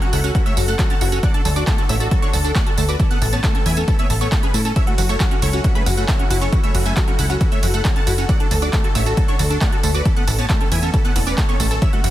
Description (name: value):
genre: uplifting trance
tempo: 136 BPM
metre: 4/4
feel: straight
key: F# minor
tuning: A4 = 439 Hz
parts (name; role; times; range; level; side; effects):
- dense compressed supersaw; melody; 0.0-12.1 s; F#4 to A5; -25 LUFS; left 1 dB; sidechain pumping, ping-pong delay
- wide unison pluck; second line; 0.0-12.1 s; F#5 to A6; -29 LUFS; right 2 dB; sidechain pumping, ping-pong delay
- dark chamber string section; sustained chords; 0.0-12.1 s; D3 to A4; -30 LUFS; left 1 dB; sidechain pumping
- liquid acid bass; arpeggios; 0.0-12.1 s; E3 to F#4; -28 LUFS; right 3 dB; chorus, sidechain pumping, ping-pong delay
- big-room dance drum kit; drums; 0.0-12.1 s; handclaps, hi-hat, ride cymbal, tambourine; -26 LUFS; right 2 dB; overdrive, sidechain pumping on hats, sidechain pumping on perc, sidechain pumping on cymbals
- plucky analog bass; bass; 0.1-12.1 s; E1 to A2; -20 LUFS; equal; sidechain pumping
- electronic kick drum; drums; 0.3-11.9 s; none; -18 LUFS; equal; overdrive
room: digital ambience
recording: dense, heavily limited modern master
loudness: -15 LUFS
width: side -14 dB against mid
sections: 0.0-12.1 A section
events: none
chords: 0.0 F#m7; 1.2 D; 3.0 Aadd9; 4.8 F#m7; 8.3 D; 10.1 Aadd9